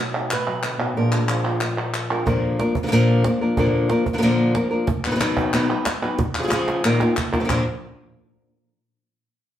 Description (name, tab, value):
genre	flamenco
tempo	184 BPM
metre	4/4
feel	straight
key	Bb phrygian dominant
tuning	A4 = 440 Hz
part	flamenco guitar	melody	0.0-7.6 s	Bb2 to B4	-20 LUFS	left 1 dB	plate reverb
part	flamenco guitar	stabs	0.0-2.3 s	Bb2 to F#4	-29 LUFS	right 4 dB	slapback echo
part	palmas hand claps	percussion	0.1-2.3, 5.0-7.6 s	none	-25 LUFS	equal	none
part	cajon	percussion	2.3-7.6 s	none	-27 LUFS	right 2 dB	none
room	wet studio reverb, RT60 0.8 s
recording	heard from further back in the room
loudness	-18 LUFS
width	side -11 dB against mid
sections	0.0-2.3 A section; 2.3-7.5 B section; 7.5-8.8 C section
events	drum fill 6.7-7.5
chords	0.0 B; 1.0 Bb7; 2.3 Bb; 4.9 B; 6.2 Db; 6.8 Bbsus4; 7.5 N.C.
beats	0.31 0.64 | 0.96 1.29 1.62 1.95 | 2.27 2.60 2.92 3.25 | 3.58 3.90 4.23 4.56 | 4.88 5.21 5.54 5.87 | 6.19 6.52 6.85 7.17 | 7.50